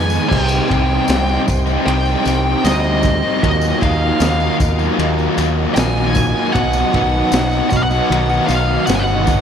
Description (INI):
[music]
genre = psychedelic rock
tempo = 77 BPM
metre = 4/4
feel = straight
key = C harmonic minor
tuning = A4 = 440 Hz
[part]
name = fuzz lead guitar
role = melody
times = 0.0-9.4 s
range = Eb5 to Ab5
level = -20 LUFS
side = equal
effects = wah, distortion, ping-pong delay
[part]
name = combo organ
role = sustained chords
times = 0.0-9.4 s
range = G3 to Eb5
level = -24 LUFS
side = right 2 dB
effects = none
[part]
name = overdriven semi-hollow guitar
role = riff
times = 0.0-9.4 s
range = Ab2 to Eb4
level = -19 LUFS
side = left 1 dB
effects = tremolo
[part]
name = growling picked electric bass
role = bass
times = 0.0-9.4 s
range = G1 to F2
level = -19 LUFS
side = equal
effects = overdrive
[part]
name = tambourine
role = percussion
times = 0.1-9.4 s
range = none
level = -35 LUFS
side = left 7 dB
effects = none
[part]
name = crunchy breakbeat drum kit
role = drums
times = 0.3-9.4 s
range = crash cymbal, kick drum, ride cymbal, snare drum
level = -22 LUFS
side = equal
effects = none
[sound]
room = moderate huge ambient reverb, RT60 8.2 s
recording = dreamy mix soaked in reverb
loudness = -13 LUFS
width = side -8 dB against mid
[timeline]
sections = 0.3-9.4 A section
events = none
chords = 0.3 Cm; 3.4 Ebmadd9; 6.5 B